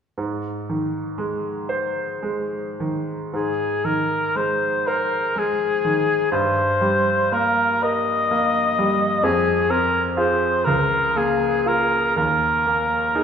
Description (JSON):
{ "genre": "classical, romantic duo for oboe and grand piano", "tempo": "34-43 BPM (dotted quarters)", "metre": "6/8", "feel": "rubato", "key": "Ab major", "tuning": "A4 = 440 Hz", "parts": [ { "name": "bright concert grand piano", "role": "accompaniment", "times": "0.2-13.2 s", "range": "Db2 to C5", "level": "-23 LUFS", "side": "right 2 dB", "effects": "none" }, { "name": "mellow oboe", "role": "melody", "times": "3.4-13.2 s", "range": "Ab4 to Eb5", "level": "-19 LUFS", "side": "left 2 dB", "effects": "none" } ], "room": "moderate scoring stage reverb, RT60 1.7 s", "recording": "recorded in a church or concert hall", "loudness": "-19 LUFS", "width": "side -7 dB against mid", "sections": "0.2-3.3 A section; 3.3-13.2 B section", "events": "none", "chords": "0.2 Ab; 6.3 Eb/G; 9.2 Fm; 10.7 Bbm7/Db; 12.2 Eb5" }